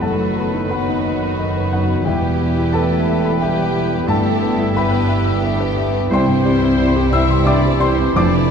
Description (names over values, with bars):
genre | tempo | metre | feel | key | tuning
classical | 89 BPM | 3/4 | rubato | E minor | A4 = 440 Hz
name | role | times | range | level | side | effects
clear studio violin section | melody | 0.0-8.5 s | E4 to G4 | -28 LUFS | left 3 dB | none
warm concert grand piano | melody | 0.0-8.5 s | C2 to E6 | -19 LUFS | left 1 dB | none
bright oboe | second line | 0.0-8.3 s | B4 to E5 | -32 LUFS | right 1 dB | none
mellow clarinet | second line | 0.0-8.3 s | D#4 to E4 | -27 LUFS | equal | none
mellow hollow small flute group | second line | 0.0-8.3 s | G5 to B5 | -32 LUFS | right 3 dB | none
rich symphonic violin section | second line | 0.0-8.5 s | G3 to E4 | -29 LUFS | left 3 dB | none
mellow bassoon | accompaniment | 0.0-8.3 s | F#3 to C4 | -30 LUFS | right 2 dB | none
rich symphonic viola section | accompaniment | 0.0-8.5 s | F#4 to E5 | -28 LUFS | right 1 dB | none
bright trombone section | sustained chords | 0.0-8.5 s | D#3 to B3 | -27 LUFS | right 7 dB | none
mellow French horn section | sustained chords | 0.0-8.5 s | F#3 to E4 | -23 LUFS | left 5 dB | none
rich symphonic cello section | bass | 0.0-8.5 s | E2 to C3 | -24 LUFS | right 2 dB | none
rich symphonic double bass section | bass | 0.0-8.5 s | E1 to C2 | -23 LUFS | right 3 dB | none
room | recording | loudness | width
moderate scoring stage reverb, RT60 1.8 s | dark, warm production | -14 LUFS | side -6 dB against mid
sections
0.0-8.5 A section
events
none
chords
0.0 B7/F#; 2.1 Em; 4.1 Em/G; 6.1 C